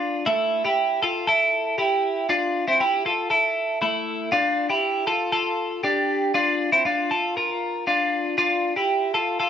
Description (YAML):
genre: indie pop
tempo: 118 BPM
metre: 4/4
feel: straight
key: unclear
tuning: A4 = 442 Hz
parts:
  - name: twelve-string electric guitar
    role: solo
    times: 0.0-9.5 s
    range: A3 to Bb4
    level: -20 LUFS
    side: equal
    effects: none
room: moderate large studio reverb, RT60 0.8 s, digital ambience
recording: nothing above 7.8 kHz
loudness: -20 LUFS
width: side -9 dB against mid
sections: 0.0-8.4 A section; 8.4-9.5 B section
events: none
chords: 0.3 Asus4; 4.3 Bb (rootless); 8.4 Dm